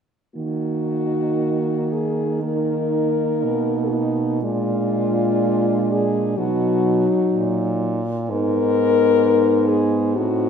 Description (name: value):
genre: classical, lyrical piece for horn quartet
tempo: 57-66 BPM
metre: 4/4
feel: rubato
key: Eb minor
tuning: A4 = 440 Hz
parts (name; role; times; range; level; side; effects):
- clear French horn; melody; 0.4-10.5 s; Eb4 to Bb4; -22 LUFS; left 8 dB; none
- mellow French horn; second line; 0.4-10.5 s; D4 to Eb4; -25 LUFS; right 9 dB; none
- mellow French horn; accompaniment; 0.4-10.5 s; F#3 to C4; -24 LUFS; left 1 dB; none
- warm French horn; bass; 0.4-10.5 s; Ab2 to Eb3; -24 LUFS; right 3 dB; none
room: moderate scoring stage reverb, RT60 2.0 s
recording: none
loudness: -18 LUFS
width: side -7 dB against mid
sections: 0.4-10.5 A section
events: none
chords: 0.4 Ebm; 4.4 Bb7; 6.4 B; 8.3 Abmadd9